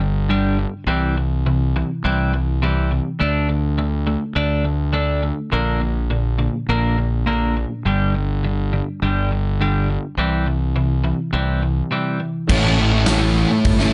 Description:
quiet-loud alternative rock; 103 BPM; 4/4; straight; A4 = 438 Hz
twelve-string electric guitar; arpeggios; 0.0-12.5 s; G2 to D4; -24 LUFS; equal
fuzz fingered electric bass; bass; 0.0-13.9 s; G1 to D2; -22 LUFS; equal; overdrive
mellow tonewheel organ; sustained chords; 12.5-13.9 s; E4 to A5; -30 LUFS; equal; slow rotary speaker, overdrive, chorus vibrato
fuzz guitar; riff; 12.5-13.9 s; A2 to E4; -19 LUFS; equal; distortion
big rock drum kit; drums; 12.5-13.9 s; crash cymbal, hi-hat, kick drum, snare drum; -23 LUFS; equal
light reverb; nothing above 10.9 kHz; -20 LUFS; mono
0.0-12.5 A section; 12.5-13.9 B section
break 11.9-12.5
0.0 G5; 0.9 C; 3.2 D5; 5.5 Bb; 7.9 G5; 10.2 C; 12.5 A

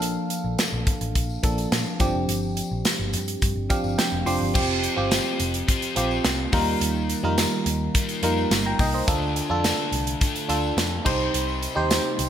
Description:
1980s-style pop; 106 BPM; 4/4; straight; A4 = 440 Hz
FM electric piano; accompaniment; 0.0-12.3 s; F3 to C6; -25 LUFS; right 1 dB; chorus
vintage muted picked electric bass; bass; 0.0-12.3 s; F1 to Bb2; -28 LUFS; left 1 dB
modern studio drum kit; drums; 0.0-12.3 s; crash cymbal, hi-hat, kick drum, snare drum, tambourine; -24 LUFS; equal; gated reverb
tambourine; percussion; 0.0-12.3 s; -37 LUFS; left 8 dB
overdriven semi-hollow guitar; accompaniment; 4.5-12.3 s; C3 to F4; -30 LUFS; left 6 dB; analog chorus
moderate plate reverb, RT60 2.1 s; bright 1980s-style digital production; -21 LUFS; side -9 dB against mid
0.0-4.5 A section; 4.5-12.3 B section
FM electric piano fill 3.4-4.5
0.0 Bbmaj7; 2.0 G7sus4; 4.5 Fsus2; 6.5 Ebadd9; 9.1 Dm; 11.1 Cm

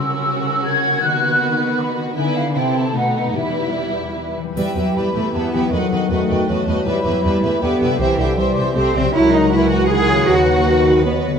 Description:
classical, dramatic, fast romantic movement for symphony orchestra; 157 BPM; 3/4; rubato; E minor; A4 = 440 Hz
warm symphonic violin section; melody; 0.0-11.4 s; A4 to F#5; -30 LUFS; left 1 dB
large flute ensemble; second line; 0.0-11.4 s; D#5 to G#6; -23 LUFS; equal
rich symphonic violin section; second line; 0.0-11.4 s; D#4 to C5; -26 LUFS; left 1 dB
dark studio viola section; accompaniment; 0.0-11.4 s; G3 to G4; -26 LUFS; right 3 dB
concert harp; arpeggios; 0.0-11.4 s; B2 to C5; -24 LUFS; left 11 dB
warm symphonic cello section; bass; 0.0-11.2 s; E2 to G#4; -21 LUFS; right 2 dB
mellow bassoon; accompaniment; 4.6-11.4 s; C3 to A3; -26 LUFS; right 2 dB
mellow French horn section; sustained chords; 4.6-11.1 s; E3 to G#4; -24 LUFS; left 4 dB
clear symphonic double bass section; bass; 4.6-11.4 s; C2 to E2; -22 LUFS; right 3 dB
triangle; percussion; 4.6-5.3 s; -45 LUFS; left 2 dB
mellow clarinet; second line; 4.9-11.4 s; B3 to A4; -27 LUFS; equal
light reverb; close, detailed microphones; -15 LUFS; side -7 dB against mid
0.0-4.6 A section; 4.6-11.4 A section
0.0 F#7/C#; 1.0 B/D#; 2.2 E7/D; 2.6 Am/C; 3.0 B7; 3.4 Em; 8.0 C; 9.1 F#7/C#; 10.3 B/D#

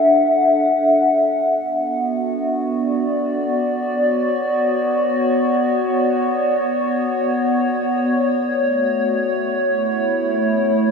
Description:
ambient; free time; A4 = 439 Hz
warbly tape-like pad; solo; 0.0-10.9 s; A3 to F#5; -16 LUFS; left 1 dB; chorus, built-in reverb, diffuse ambient delay
wet lush hall reverb, RT60 2.5 s; dreamy mix soaked in reverb, small room ambience; -16 LUFS; side -5 dB against mid
0.0-10.9 A section
0.0 D; 1.4 Bm7; 8.5 A

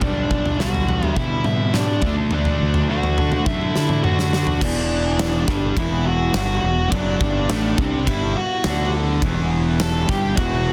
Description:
quiet-loud alternative rock; 104 BPM; 4/4; straight; E minor; A4 = 440 Hz
high-gain lead guitar; melody; 0.0-10.7 s; D4 to A5; -27 LUFS; equal; distortion, digital delay
crunchy overdriven guitar; riff; 0.0-10.7 s; E2 to D4; -28 LUFS; equal
fuzz guitar; riff; 0.0-10.7 s; E2 to D4; -29 LUFS; equal; distortion
fuzz fingered electric bass; bass; 0.0-10.7 s; E1 to D3; -26 LUFS; equal; overdrive
big rock drum kit; drums; 0.0-10.5 s; crash cymbal, kick drum, ride cymbal, snare drum, toms; -25 LUFS; equal; soft clipping on snare
string machine, violins; sustained chords; 4.6-10.7 s; G3 to B4; -36 LUFS; equal
little or no reverb; dense, heavily limited modern master; -20 LUFS; mono
0.0-4.6 A section; 4.6-10.7 B section
drum fill 3.5-4.6
0.0 G/B; 2.0 Dadd9; 4.6 Em

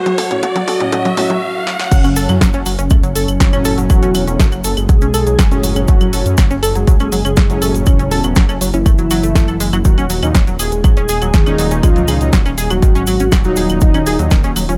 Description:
melodic techno; 121 BPM; 4/4; straight; F# minor; A4 = 440 Hz
fat analog lead; melody; 0.0-14.8 s; C#4 to G#4; -23 LUFS; equal; analog chorus, sidechain pumping, tape echo
riser; sound effects; 0.0-1.9 s; -25 LUFS; equal
tight sequenced synth; arpeggios; 0.1-14.7 s; D#3 to A4; -24 LUFS; equal; chorus, sidechain pumping, tape echo
house drum kit; drums; 0.1-14.8 s; claves, crash cymbal, hi-hat, snare drum, toms; -23 LUFS; equal; sidechain pumping on hats, high-pass filter on hats, sidechain pumping on toms, high-pass filter on toms, high-pass filter on snare, sidechain pumping on cymbals, high-pass filter on cymbals, sidechain pumping on perc, high-pass filter on perc
analog synth brass; stabs; 0.3-14.3 s; A2 to D#4; -25 LUFS; equal; chorus, sidechain pumping, tape echo
airy dreamy lead; second line; 1.9-14.8 s; C#3 to G#3; -27 LUFS; equal
swelling detuned saw bass; bass; 1.9-14.8 s; D#1 to F#2; -21 LUFS; equal; sidechain pumping
electronic kick drum; drums; 1.9-14.4 s; -13 LUFS; equal
cabasa; percussion; 1.9-14.8 s; -29 LUFS; equal
little or no reverb; -13 LUFS; mono
0.0-1.9 A section; 1.9-14.8 B section
build-up 0.0-1.9; drum fill 0.0-1.4, 1.7; riser 0.0-1.9; stop 1.4-1.9; drop 1.9-14.8
0.0 F#m; 9.8 D#m

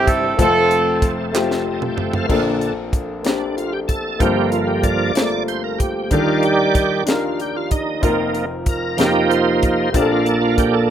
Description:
slow gospel; 63 BPM (dotted quarters); 6/8; straight; Bb major; A4 = 438 Hz
warm horn section; melody; 0.0-1.3 s; C4 to A4; -16 LUFS; right 2 dB; plate reverb
warm grand piano; accompaniment; 0.0-10.9 s; F1 to C5; -22 LUFS; left 4 dB; plate reverb
bright tonewheel organ; sustained chords; 0.0-10.9 s; G2 to G5; -19 LUFS; right 3 dB; slow rotary speaker, overdrive, chorus vibrato
tight funk drum kit; drums; 0.1-10.7 s; crash cymbal, hi-hat, kick drum, snare drum, toms; -20 LUFS; equal
group handclap; percussion; 1.4-1.6 s; -23 LUFS; right 6 dB
mellow French horn section; sustained chords; 2.3-10.9 s; Eb3 to D5; -29 LUFS; right 2 dB
light reverb; rough home demo mix; -16 LUFS; side -10 dB against mid
0.0-2.3 A section; 2.3-10.9 B section
drum fill 1.3-2.3; tonewheel organ solo 2.3-10.9
0.4 F; 2.3 Bbmaj9; 4.2 Gm11; 6.1 Ebmaj7; 8.0 F7sus4; 9.0 F9sus4; 9.9 Bbmaj9

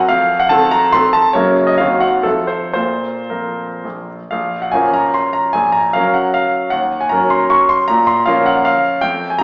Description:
classical, romantic triple-time dance for piano with dotted rhythms; 107-171 BPM; 3/4; rubato; Bb minor; A4 = 440 Hz
bright concert grand piano; solo; 0.0-9.4 s; Bb1 to Db6; -12 LUFS; equal
wet stone room reverb, RT60 1.3 s; heard from further back in the room, AM radio sound; -12 LUFS; side -35 dB against mid
0.0-4.3 A section; 4.3-9.4 B section
0.1 F7; 1.3 Gb; 1.8 Cdim/Eb; 2.3 F; 2.8 Bb5; 4.3 Bbm; 5.6 Gb/Bb; 6.7 Ebm7; 7.9 Bbm

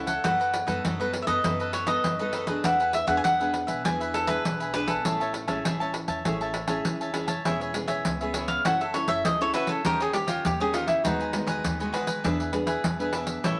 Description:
samba and choro; 100 BPM; 4/4; straight; A major, E major from 7.5 s; A4 = 441 Hz
cavaquinho; melody; 0.0-12.2 s; D#4 to G#5; -29 LUFS; equal
cavaquinho; accompaniment; 0.0-13.6 s; D4 to A5; -34 LUFS; equal
nylon-string guitar; accompaniment; 0.0-13.6 s; A2 to A4; -35 LUFS; equal
upright bass; bass; 0.0-13.6 s; E1 to F#2; -42 LUFS; equal
pandeiro; percussion; 0.1-13.6 s; -32 LUFS; equal
wet studio reverb, RT60 0.5 s; -27 LUFS; mono
0.0-7.5 A section; 7.5-13.6 B section
cavaquinho solo 7.5-13.6
0.2 B7/F#; 2.6 E7; 5.0 Amaj7; 7.5 E6; 8.7 F#m7; 9.8 D#7; 11.0 G#m7/D#; 12.2 E7

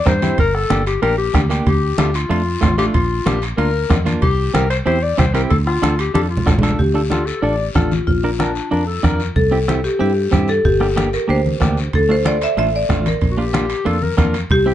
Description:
latin, cumbia; 187 BPM; 4/4; straight; D minor; A4 = 440 Hz
clear clarinet; second line; 0.0-9.3, 13.3-14.4 s; D4 to D5; -21 LUFS; left 4 dB
clean electric guitar; accompaniment; 0.1-14.7 s; A3 to Bb4; -22 LUFS; right 3 dB
fingered electric bass; bass; 0.1-14.7 s; G1 to G2; -20 LUFS; equal
bombo; percussion; 0.1-14.7 s; -20 LUFS; right 1 dB
congas; percussion; 0.1-14.7 s; -23 LUFS; left 2 dB
guiro; percussion; 0.1-14.7 s; -32 LUFS; left 6 dB
timbales; percussion; 0.1-6.8, 11.9-14.7 s; -31 LUFS; right 7 dB
marimba with medium hard mallets; melody; 6.8-14.7 s; F4 to E5; -19 LUFS; left 1 dB; plate reverb
light reverb; dark, warm production, nothing above 10.6 kHz; -14 LUFS; side -12 dB against mid
0.0-6.8 A section; 6.8-14.7 B section
clarinet solo 0.0-6.8; drum fill 6.2-6.8
0.4 Gm; 1.7 Dm; 2.9 Bb; 4.2 C; 5.5 Dm; 8.1 Bb; 9.4 C; 10.6 Gm; 11.9 Dm; 13.2 Bb

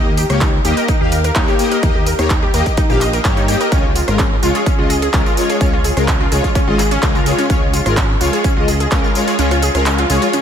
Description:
progressive house; 127 BPM; 4/4; straight; A4 = 441 Hz
soft supersaw; stabs; 0.0-10.3 s; Ab3 to F5; -18 LUFS; left 2 dB; ensemble chorus, sidechain pumping, analog delay
fat analog bass; bass; 0.0-10.2 s; Ab1 to G2; -19 LUFS; equal; tube saturation, sidechain pumping
wide unison pluck; arpeggios; 0.2-10.4 s; Db4 to G5; -20 LUFS; equal; sidechain pumping, analog delay
deep house drum kit; drums; 0.2-10.4 s; handclaps, hi-hat, rim click, tambourine; -22 LUFS; right 1 dB; overdrive, studio reverb
electronic kick drum; drums; 0.4-9.0 s; -16 LUFS; equal; overdrive, studio reverb
moderate lush hall reverb, RT60 1.8 s, digital ambience; dreamy mix soaked in reverb; -12 LUFS; side -8 dB against mid
0.0-10.4 A section
kick drops out 9.4-10.4
0.0 Eb; 3.7 Db

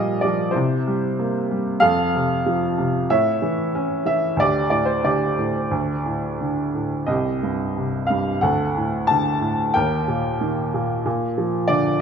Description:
classical, lyrical solo piano; 91 BPM; 4/4; uneven beats, rubato; A4 = 440 Hz
clear upright piano; solo; 0.0-12.0 s; C2 to A5; -19 LUFS; equal
moderate scoring stage reverb, RT60 1.7 s; minimal, uncompressed stereo recording; -19 LUFS; side -7 dB against mid
0.0-12.0 A section
0.0 Gm7/Bb; 0.5 C7; 1.8 F; 3.1 A; 4.4 Dsus4; 7.1 Cm; 8.4 D; 9.8 Eb; 11.1 Bb

